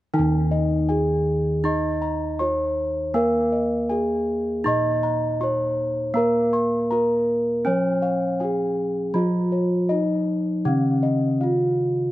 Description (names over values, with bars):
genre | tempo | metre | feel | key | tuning
Javanese gamelan | 80 BPM | 4/4 | straight | Eb slendro | A4 = 438 Hz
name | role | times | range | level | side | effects
gamelan-type bronze metallophone | melody | 0.1-12.1 s | Db4-40c to Eb5 | -23 LUFS | equal | none
gamelan-type bronze metallophone | accompaniment | 0.1-12.1 s | Db3-40c to Eb4 | -25 LUFS | right 1 dB | none
gamelan-type bossed gongs | arpeggios | 0.1-11.8 s | Db5-40c to Db6-40c | -31 LUFS | left 4 dB | slapback echo
gamelan-type bossed gongs | bass | 0.1-12.1 s | Eb2 to Bb4+20c | -28 LUFS | equal | none
room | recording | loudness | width
little or no reverb | recorded outdoors, with no room sound | -20 LUFS | side -16 dB against mid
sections
0.2-12.1 A section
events
none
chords
none